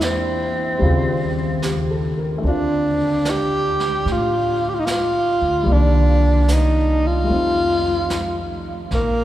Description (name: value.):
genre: jazz ballad.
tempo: 74 BPM.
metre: 4/4.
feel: swing 68% on 8ths.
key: unclear.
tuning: A4 = 440 Hz.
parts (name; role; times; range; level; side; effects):
breathy tenor saxophone; melody; 0.0-9.2 s; Bb3 to G4; -20 LUFS; equal; none.
warm baby grand piano; accompaniment; 0.0-8.9 s; Db3 to D5; -25 LUFS; left 2 dB; none.
upright bass; bass; 0.0-9.2 s; Bb1 to A2; -21 LUFS; equal; none.
jazz brush drum kit; drums; 0.0-9.2 s; brushed snare drum, hi-hat, snare drum; -32 LUFS; right 2 dB; none.
room: wet cathedral reverb, RT60 6.4 s.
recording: recorded in a church or concert hall.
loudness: -16 LUFS.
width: side -13 dB against mid.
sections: 0.0-9.2 A section.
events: none.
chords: 0.0 Em7b5; 0.8 Eb13; 2.4 Dm7; 5.7 Cm9; 7.3 F9.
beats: 0.00 0.81 1.62 | 2.43 3.24 4.05 4.86 | 5.67 6.48 7.29 8.10 | 8.90.